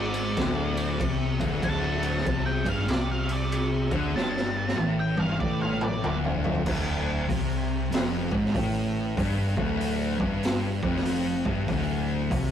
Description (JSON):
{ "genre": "stoner and doom metal", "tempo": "95 BPM", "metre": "4/4", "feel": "swing 64% on 8ths", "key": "D minor", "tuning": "A4 = 440 Hz", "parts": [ { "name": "octave-fuzz lead guitar", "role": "melody", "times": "0.0-6.2 s", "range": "D5 to A5", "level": "-32 LUFS", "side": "right 1 dB", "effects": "distortion" }, { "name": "fuzz guitar", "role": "riff", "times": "0.0-12.5 s", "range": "D2 to D3", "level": "-34 LUFS", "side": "equal", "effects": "distortion" }, { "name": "thick fuzz guitar", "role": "riff", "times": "0.0-12.5 s", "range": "D2 to D3", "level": "-30 LUFS", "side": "left 4 dB", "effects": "distortion" }, { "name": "thick fuzz guitar", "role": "riff", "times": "0.0-12.5 s", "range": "D2 to D3", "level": "-32 LUFS", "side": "right 2 dB", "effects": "distortion" }, { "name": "growling picked electric bass", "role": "bass", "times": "0.0-12.5 s", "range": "D1 to D2", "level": "-33 LUFS", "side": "right 1 dB", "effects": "overdrive" }, { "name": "raw garage drum kit", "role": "drums", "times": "0.1-12.5 s", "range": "crash cymbal, hi-hat, kick drum, ride cymbal, snare drum, toms", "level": "-29 LUFS", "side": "right 1 dB", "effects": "none" } ], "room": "moderate small room reverb, RT60 0.5 s", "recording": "rough rehearsal-room recording, warm saturation", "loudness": "-24 LUFS", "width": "side -9 dB against mid", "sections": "0.0-6.7 A section; 6.7-12.5 B section", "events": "lead electric guitar solo 0.0-6.7; drum fill 4.1-6.7", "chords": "0.0 D5; 6.7 Dm" }